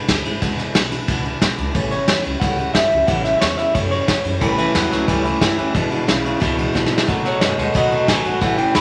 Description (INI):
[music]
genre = rockabilly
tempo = 180 BPM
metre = 4/4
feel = straight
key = unclear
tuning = A4 = 440 Hz
[part]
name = electric guitar through a small old amp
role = melody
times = 0.0-8.8 s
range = B4 to B5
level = -23 LUFS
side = equal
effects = none
[part]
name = picked steel-string acoustic guitar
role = accompaniment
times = 0.0-8.8 s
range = E2 to F#4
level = -28 LUFS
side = equal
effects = none
[part]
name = upright bass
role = bass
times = 0.1-8.8 s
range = E1 to F#2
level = -30 LUFS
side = equal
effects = none
[part]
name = vintage brush drum kit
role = drums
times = 0.1-8.8 s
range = kick drum, ride cymbal, snare drum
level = -22 LUFS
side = equal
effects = none
[part]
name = twangy electric guitar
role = riff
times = 4.4-8.8 s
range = E2 to G#3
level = -23 LUFS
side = equal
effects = none
[sound]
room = wet large studio reverb, RT60 0.8 s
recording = none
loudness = -18 LUFS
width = mono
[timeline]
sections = 0.0-8.8 A section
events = drum fill 6.7-7.1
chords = 0.0 E7; 1.7 A7; 5.7 E7; 7.1 B7